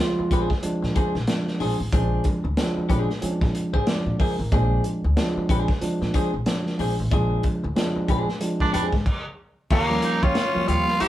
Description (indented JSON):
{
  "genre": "funk",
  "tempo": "93 BPM",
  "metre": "4/4",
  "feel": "swing 60% on 16ths",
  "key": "Bb mixolydian",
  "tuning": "A4 = 440 Hz",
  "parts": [
    { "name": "clean electric guitar", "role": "accompaniment", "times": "0.0-11.1 s", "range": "D4 to Db5", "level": "-29 LUFS", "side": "left 2 dB", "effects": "none" },
    { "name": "tine electric piano", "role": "stabs", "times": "0.0-11.0 s", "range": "F3 to D5", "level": "-26 LUFS", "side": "right 1 dB", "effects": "none" },
    { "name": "upright bass", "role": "bass", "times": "0.2-11.0 s", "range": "A1 to Bb2", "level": "-26 LUFS", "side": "equal", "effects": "none" },
    { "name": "crunchy breakbeat drum kit", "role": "drums", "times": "0.3-11.1 s", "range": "crash cymbal, hi-hat, kick drum, snare drum", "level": "-25 LUFS", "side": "equal", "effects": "none" },
    { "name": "raspy baritone saxophone", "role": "second line", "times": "8.6-11.1 s", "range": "D4 to F4", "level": "-26 LUFS", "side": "right 3 dB", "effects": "none" },
    { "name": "raspy tenor saxophone", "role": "melody", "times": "9.7-11.1 s", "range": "Bb3 to G4", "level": "-23 LUFS", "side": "left 1 dB", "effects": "none" }
  ],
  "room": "moderate studio reverb, RT60 0.6 s",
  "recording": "band playing live in one room",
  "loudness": "-20 LUFS",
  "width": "side -14 dB against mid",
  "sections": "0.0-9.7 A section; 9.7-11.1 B section",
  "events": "tine electric piano fill 3.5-4.5; band accent 7.1-9.7; stop 9.1-9.7",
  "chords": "0.0 Bb9; 9.7 Eb9"
}